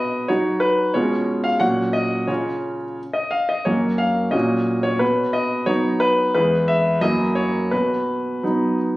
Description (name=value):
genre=classical-period piano sonatina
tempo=89 BPM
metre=2/4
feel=rubato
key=unclear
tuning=A4 = 440 Hz
part: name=clear concert grand piano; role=solo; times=0.0-9.0 s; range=E2 to F#5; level=-18 LUFS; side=equal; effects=none
room=light reverb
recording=recorded on a phone in the room, studio reverb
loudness=-18 LUFS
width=side -18 dB against mid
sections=0.0-9.0 A section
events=none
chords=0.0 B; 0.9 C#7/B; 1.6 F#/A#; 2.3 C#; 3.7 F#; 4.3 F#/A#; 5.0 B; 6.3 E; 7.0 F#7; 7.7 B